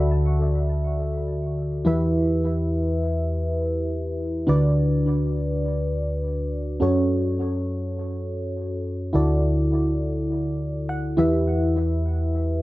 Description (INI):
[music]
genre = pop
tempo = free time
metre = none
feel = none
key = unclear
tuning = A4 = 438 Hz
[part]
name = mellow FM electric piano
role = solo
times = 0.0-12.6 s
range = D2 to F#5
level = -21 LUFS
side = equal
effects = chorus, phaser, cassette tape, tape echo
[sound]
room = wet booth ambience, RT60 0.2 s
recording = home recording on cassette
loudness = -21 LUFS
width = side -18 dB against mid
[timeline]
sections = 0.0-12.6 A section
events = FM electric piano fill 10.6-11.5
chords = 0.0 Dadd9; 1.9 Em; 4.5 Bm/D; 6.8 F#m; 9.1 Dadd9; 11.2 Em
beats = free time